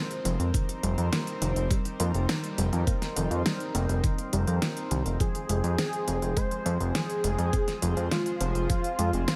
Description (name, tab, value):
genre	synthwave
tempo	103 BPM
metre	4/4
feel	straight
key	F minor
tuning	A4 = 439 Hz
part	chorused pulse-width pad	sustained chords	0.0-9.4 s	F3 to C5	-37 LUFS	equal	sidechain pumping
part	soft round pluck	arpeggios	0.0-9.4 s	Eb3 to C4	-38 LUFS	equal	chorus, digital delay
part	pop drum kit	drums	0.1-9.4 s	hi-hat, snare drum	-35 LUFS	equal	small room ambience
part	fat analog bass	bass	0.3-9.3 s	F1 to F2	-30 LUFS	equal	none
part	electronic kick drum	drums	0.5-8.8 s	none	-30 LUFS	equal	small room ambience
part	unison lead	melody	5.2-9.4 s	F4 to C5	-34 LUFS	equal	subtle chorus, digital delay
room	light reverb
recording	none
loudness	-28 LUFS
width	mono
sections	0.0-9.4 A section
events	none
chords	0.0 Fm; 0.5 Cm7/F; 5.2 Fm